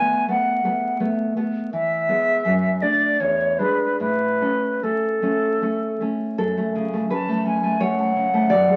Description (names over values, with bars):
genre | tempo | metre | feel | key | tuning
romantic duo for flute and classical guitar | 72-89 BPM | 3/4 | rubato | A major | A4 = 440 Hz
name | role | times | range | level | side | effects
silver concert flute | melody | 0.0-8.8 s | A4 to A5 | -23 LUFS | equal | none
nylon-string guitar | accompaniment | 0.0-8.8 s | E2 to D5 | -24 LUFS | equal | none
room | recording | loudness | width
wet club reverb, RT60 0.5 s | very old 78 rpm record, vinyl crackle | -22 LUFS | mono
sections
0.0-6.4 A section; 6.4-8.8 B section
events
none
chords
0.0 B7(no3); 1.7 E; 2.4 D/F#; 3.2 E7; 4.0 A; 6.4 F#m